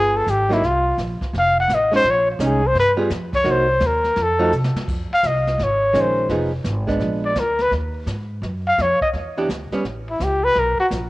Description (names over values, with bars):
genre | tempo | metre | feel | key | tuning
jazz, small-group swing and bop | 169 BPM | 4/4 | swing 65% on 8ths | unclear | A4 = 440 Hz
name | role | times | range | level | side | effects
breathy trumpet | melody | 0.0-10.9 s | E4 to Gb5 | -18 LUFS | left 1 dB | cassette tape
archtop guitar, miked and amplified | accompaniment | 0.0-9.8 s | Eb3 to Ab4 | -23 LUFS | right 2 dB | cassette tape
upright bass | bass | 0.0-11.1 s | F1 to C3 | -24 LUFS | equal | none
jazz brush drum kit | drums | 0.3-11.1 s | brushed snare drum, crash cymbal, hi-hat, kick drum, snare drum | -31 LUFS | equal | cassette tape
room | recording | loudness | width
moderate spring reverb, RT60 1.7 s, studio reverb | home recording on cassette | -17 LUFS | side -19 dB against mid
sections
0.0-4.9 A section; 4.9-11.1 A section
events
trumpet solo 0.0-11.1; drum fill 4.5-4.9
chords
0.0 G7b9; 0.6 Bbsus2; 1.3 F7; 2.0 Bbm11; 2.8 G7b9; 3.5 Cm7b5; 4.2 F7b9; 4.9 Bbm11; 6.3 Fm7b5; 7.0 Bb7b9; 7.7 Ebmadd9; 9.1 Em7; 9.8 A; 10.6 Bmaj7(no3)